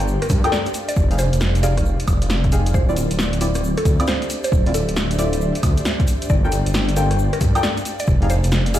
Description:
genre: UK garage, two-step garage.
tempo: 135 BPM.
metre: 4/4.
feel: swing 65% on 16ths.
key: D minor.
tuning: A4 = 440 Hz.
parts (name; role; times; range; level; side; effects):
airy breathy pad; sustained chords; 0.0-8.8 s; D5; -34 LUFS; right 3 dB; chorus, sidechain pumping.
dark detuned saw bass; bass; 0.0-8.8 s; D1 to G2; -19 LUFS; equal; none.
punchy analog drum machine; drums; 0.0-8.8 s; hi-hat, rim click, snare drum, woodblock; -25 LUFS; equal; overdrive.
tube shaker; percussion; 0.0-8.8 s; none; -36 LUFS; left 3 dB; none.
ethereal airy pad; texture; 0.0-8.8 s; C4 to F5; -30 LUFS; equal; ensemble chorus, built-in reverb, sidechain pumping.
mallet-like synth pluck; melody; 0.2-8.8 s; Ab4 to D5; -28 LUFS; right 1 dB; chorus, phaser, digital delay.
electronic kick drum; drums; 0.3-8.2 s; none; -19 LUFS; equal; overdrive.
deep mellow chord stab; stabs; 0.4-8.8 s; C4 to G5; -26 LUFS; left 2 dB; chorus, digital delay.
room: light reverb, digital ambience.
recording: played on a big sound system in a bare room, large studio reverb, vinyl crackle.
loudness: -16 LUFS.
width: side -12 dB against mid.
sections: 0.0-8.8 A section.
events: none.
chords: 0.0 Gm9; 0.7 Fm9; 2.7 Dm9; 6.3 Gm9; 7.9 F7sus2.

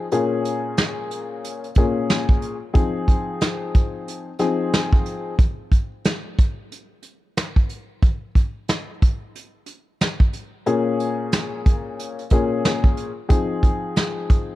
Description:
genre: hip hop, boom-bap hip-hop.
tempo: 91 BPM.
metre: 4/4.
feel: swing 58% on 16ths.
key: unclear.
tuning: A4 = 440 Hz.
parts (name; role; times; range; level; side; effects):
dark upright piano; accompaniment; 0.0-5.3, 10.7-14.6 s; Bb2 to Ab4; -23 LUFS; left 4 dB; cassette tape, high-pass filter, low-pass filter.
vintage brush drum kit; drums; 0.1-14.5 s; hi-hat, kick drum, snare drum; -18 LUFS; equal; none.
room: small room ambience.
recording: dark, warm production.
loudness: -19 LUFS.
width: side -16 dB against mid.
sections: 0.0-14.6 A section.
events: kick muted 0.1-1.4, 10.7-11.3.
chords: 0.1 Bbm7; 2.8 Fm7; 5.4 N.C.; 10.7 Bbm7; 13.3 Fm7.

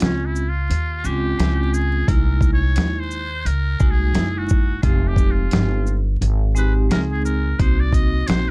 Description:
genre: hip hop, jazz-hop.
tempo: 87 BPM.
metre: 4/4.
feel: swing 61% on 16ths.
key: unclear.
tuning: A4 = 440 Hz.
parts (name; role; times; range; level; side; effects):
trumpet with metal mute; melody; 0.0-8.5 s; Db4 to Eb5; -27 LUFS; equal; none.
vibraphone with hard mallets; accompaniment; 0.0-8.5 s; Ab3 to Ab4; -25 LUFS; right 1 dB; none.
upright bass; bass; 0.0-8.5 s; F1 to Eb2; -20 LUFS; equal; none.
dusty soul sampler-style drum kit; drums; 0.0-8.5 s; hi-hat, kick drum, shaker, snare drum; -18 LUFS; equal; overdrive.
room: little or no reverb.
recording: dark, warm production, vinyl crackle.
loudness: -16 LUFS.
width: side -28 dB against mid.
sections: 0.0-8.5 A section.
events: muted trumpet solo 0.0-8.5.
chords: 0.0 Bbm7 (rootless); 2.1 C7alt; 4.8 Fm7; 7.6 Cm7b5.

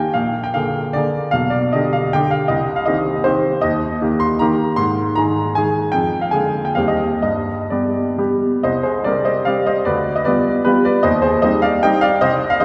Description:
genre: classical, romantic triple-time dance for piano with dotted rhythms.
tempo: 122-170 BPM.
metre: 3/4.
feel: rubato.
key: C minor from 3.6 s.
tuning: A4 = 442 Hz.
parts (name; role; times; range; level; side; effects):
bright baby grand piano; solo; 0.0-12.6 s; Bb1 to C6; -18 LUFS; equal; none.
room: wet concert hall reverb, RT60 2.2 s.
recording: heard from further back in the room, nothing above 10.9 kHz.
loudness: -18 LUFS.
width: mono.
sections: 0.0-8.6 A section; 8.6-12.6 B section.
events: none.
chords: 0.1 Bb7; 1.3 G/B; 2.5 Cm; 3.6 Eb; 4.8 Ab; 5.9 Ddim/F; 6.8 Cm/Eb; 7.2 G; 8.6 C5; 9.9 G7/D; 11.0 Cm/Eb.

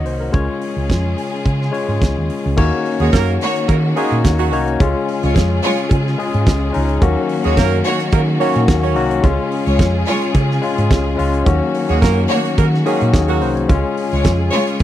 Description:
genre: disco.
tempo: 108 BPM.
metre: 4/4.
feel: straight.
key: Eb minor.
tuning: A4 = 438 Hz.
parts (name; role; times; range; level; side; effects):
barky tine electric piano; accompaniment; 0.0-14.8 s; Eb3 to Gb5; -19 LUFS; left 5 dB; overdrive.
clear studio string section; sustained chords; 0.0-14.8 s; Db3 to Ab4; -25 LUFS; equal; none.
hollow-body short-scale fingered electric bass; bass; 0.0-14.8 s; C2 to Eb3; -18 LUFS; right 1 dB; none.
damped 70s drum kit; drums; 0.1-14.8 s; crash cymbal, hi-hat, kick drum, snare drum; -16 LUFS; right 1 dB; none.
cowbell; percussion; 2.6-14.8 s; none; -31 LUFS; right 3 dB; none.
clear studio string section; second line; 3.0-14.8 s; Ab3 to Db5; -20 LUFS; equal; none.
warm horn section; stabs; 3.0-13.5 s; Gb3 to Db5; -21 LUFS; right 12 dB; none.
room: little or no reverb.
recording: dry, close 1970s-style studio recording.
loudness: -14 LUFS.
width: side -12 dB against mid.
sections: 0.0-2.6 A section; 2.6-14.8 B section.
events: none.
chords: 0.3 Db; 2.6 Ebm7; 4.8 Db; 7.0 Ebm7; 9.2 Db; 11.5 Ebm7; 13.7 Db.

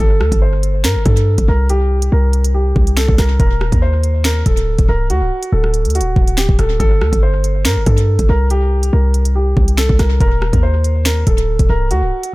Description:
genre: hip hop, drill.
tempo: 141 BPM.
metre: 4/4.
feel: half-time.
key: G harmonic minor.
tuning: A4 = 441 Hz.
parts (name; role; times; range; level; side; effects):
dark concert grand piano; melody; 0.0-12.3 s; F#4 to C5; -20 LUFS; equal; tape echo.
hard-hitting 808-style bass; bass; 0.0-12.1 s; C1 to G2; -14 LUFS; equal; none.
drill drum kit; drums; 0.2-12.3 s; finger snaps, hi-hat, kick drum, rim click, snare drum; -16 LUFS; equal; none.
room: digital ambience.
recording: echo-heavy mix.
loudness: -12 LUFS.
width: side -20 dB against mid.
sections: 0.0-12.3 A section.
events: none.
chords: 0.0 Gsus2; 1.7 C5; 3.4 Eb5; 5.1 D; 6.8 Gsus2; 8.5 C5; 10.2 Eb5.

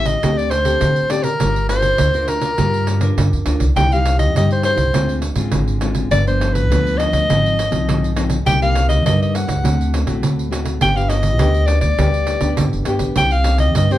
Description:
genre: samba and choro.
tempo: 102 BPM.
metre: 4/4.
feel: straight.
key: G minor, C harmonic minor from 3.8 s.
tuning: A4 = 440 Hz.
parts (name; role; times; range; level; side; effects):
warm soprano saxophone; melody; 0.0-14.0 s; Bb4 to G5; -19 LUFS; left 1 dB; none.
nylon-string guitar; accompaniment; 0.0-14.0 s; G2 to Bb4; -23 LUFS; left 3 dB; none.
upright bass; bass; 0.0-14.0 s; F1 to D3; -18 LUFS; equal; none.
pandeiro; percussion; 0.1-14.0 s; none; -21 LUFS; right 2 dB; none.
room: wet small room reverb, RT60 0.6 s.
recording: heard from further back in the room.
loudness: -14 LUFS.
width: side -14 dB against mid.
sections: 0.0-3.8 A section; 3.8-14.0 B section.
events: none.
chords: 0.2 D7sus4; 1.4 Gm7; 3.8 Cm; 4.9 Dm7b5; 6.1 G7; 7.3 Fm7/Ab; 8.5 Cm7; 9.6 D7; 10.8 G; 13.2 Cm.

